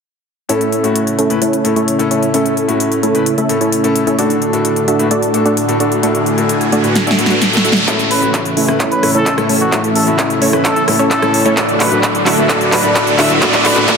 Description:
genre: EDM, festival progressive house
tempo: 130 BPM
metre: 4/4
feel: straight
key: A major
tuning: A4 = 440 Hz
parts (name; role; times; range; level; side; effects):
- clear concert grand piano; accompaniment; 0.5-14.0 s; A2 to B4; -18 LUFS; left 4 dB; sidechain pumping, dub echo
- lush unison pad; sustained chords; 0.5-14.0 s; A2 to G#5; -21 LUFS; right 1 dB; chorus, sidechain pumping
- supersaw stab; riff; 0.5-14.0 s; A3 to E5; -16 LUFS; right 1 dB; sidechain pumping, low-pass filter, dub echo
- big-room dance drum kit; drums; 0.5-14.0 s; handclaps, hi-hat, rim click, snare drum; -18 LUFS; equal; overdrive
- riser; sound effects; 5.4-14.0 s; none; -20 LUFS; right 1 dB; none
- wide unison lead; arpeggios; 7.9-14.0 s; C#5 to E5; -21 LUFS; equal; sidechain pumping, dub echo
- wide detuned saw bass; bass; 7.9-14.0 s; none; barely audible; none; none
- electronic kick drum; drums; 7.9-14.0 s; none; -21 LUFS; right 1 dB; overdrive, high-pass filter on kick
- trumpet with plunger mute; melody; 8.1-13.8 s; F#4 to B4; -19 LUFS; equal; dub echo
room: wet lush hall reverb, RT60 1.8 s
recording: dense, heavily limited modern master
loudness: -11 LUFS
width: side -6 dB against mid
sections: 0.5-7.9 A section; 7.9-14.0 B section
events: filter sweep on analog synth pad 0.5-7.9; riser 5.4-7.9, 7.9-14.0; drum fill 7.0-7.9, 7.9-14.0; build-up 7.9-14.0; filter sweep on supersaw synth 7.9-14.0; filter sweep on analog synth lead 7.9-14.0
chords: 0.5 A; 4.2 D/A; 7.9 A; 11.6 D/A

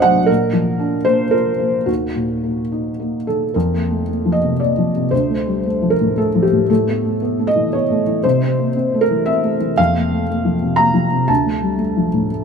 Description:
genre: neoclassical minimalist piano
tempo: 116 BPM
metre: 3/4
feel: rubato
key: unclear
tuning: A4 = 436 Hz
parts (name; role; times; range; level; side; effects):
- felt-muted upright piano; solo; 0.0-12.4 s; D2 to Bb5; -15 LUFS; equal; none
room: moderate plate reverb, RT60 2.9 s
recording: minimal, uncompressed stereo recording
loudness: -15 LUFS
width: side -6 dB against mid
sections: 0.0-3.5 A section; 3.5-12.4 B section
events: none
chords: 0.3 Bb; 1.9 Ebm; 3.5 Fsus4; 5.1 Dm; 6.7 Asus2; 8.2 C6; 9.8 Fsus4; 11.3 Dm

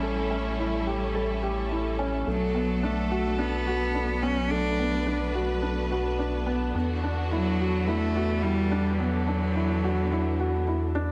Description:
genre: electronica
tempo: 107 BPM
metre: 4/4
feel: straight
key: B minor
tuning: A4 = 440 Hz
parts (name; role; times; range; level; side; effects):
- clear symphonic string section; sustained chords; 0.0-11.1 s; D3 to B4; -35 LUFS; equal; none
- felt-muted upright piano; riff; 0.0-11.1 s; A3 to A4; -32 LUFS; equal; none
- round analog bass; bass; 0.0-11.1 s; A1 to E2; -32 LUFS; equal; none
- clear cello; melody; 2.3-10.7 s; F#3 to D4; -31 LUFS; equal; none
room: moderate scoring stage reverb, RT60 1.4 s, small room ambience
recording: none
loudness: -27 LUFS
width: mono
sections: 0.0-11.1 A section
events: filter sweep on felt piano 0.0-11.1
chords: 0.0 A7; 2.3 Bm7; 6.8 E7sus2

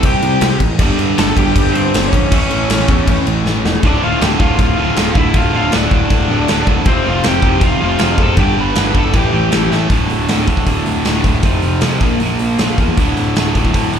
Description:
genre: punk rock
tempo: 158 BPM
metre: 4/4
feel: straight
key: D minor from 3.8 s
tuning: A4 = 440 Hz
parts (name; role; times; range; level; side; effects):
- lead guitar through a small cranked amp; melody; 0.0-9.7 s; C4 to B5; -19 LUFS; left 2 dB; overdrive, slapback echo, digital delay
- biting overdriven guitar; riff; 0.0-14.0 s; D2 to C4; -23 LUFS; equal; slapback echo
- cranked stack guitar; riff; 0.0-14.0 s; D2 to C4; -22 LUFS; left 12 dB; overdrive
- crunchy overdriven guitar; riff; 0.0-14.0 s; D2 to C4; -19 LUFS; right 11 dB; slapback echo
- fuzz picked electric bass; bass; 0.0-14.0 s; D1 to G2; -19 LUFS; equal; overdrive
- big rock drum kit; drums; 0.0-14.0 s; crash cymbal, hi-hat, kick drum, snare drum; -16 LUFS; equal; none
room: little or no reverb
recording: live gig heard through the venue's PA, club reverb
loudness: -11 LUFS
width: side -8 dB against mid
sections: 0.0-3.8 A section; 3.8-9.9 B section; 9.9-14.0 C section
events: drum fill 3.5-3.8, 9.7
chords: 0.0 C5; 0.8 G5; 2.3 A; 3.8 Dm; 6.9 F; 8.4 G; 9.2 A5; 9.9 D5; 11.4 F5; 12.0 Bb5; 13.0 D5

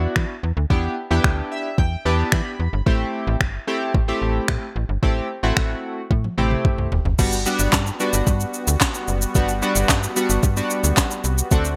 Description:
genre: dance-pop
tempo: 111 BPM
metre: 4/4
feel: straight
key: G major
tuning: A4 = 441 Hz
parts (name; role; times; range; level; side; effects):
- chorused retro synth keys; accompaniment; 0.0-11.7 s; G3 to B5; -26 LUFS; equal; sidechain pumping
- slap-like FM bass; bass; 0.0-11.8 s; E1 to E3; -25 LUFS; equal; sidechain pumping
- smooth R&B drum kit; drums; 0.2-11.8 s; crash cymbal, finger snaps, handclaps, kick drum, shaker, snare drum, toms; -22 LUFS; equal; gated reverb
- soft supersaw; sustained chords; 7.2-11.8 s; D3 to F#4; -32 LUFS; equal; sidechain pumping
room: light reverb, digital ambience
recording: bright 1980s-style digital production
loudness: -21 LUFS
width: mono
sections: 0.0-7.2 A section; 7.2-11.8 B section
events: synth keys fill 1.2-2.9; drum fill 6.1-7.2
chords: 0.0 Em7; 2.9 Am7; 7.2 Gmaj7

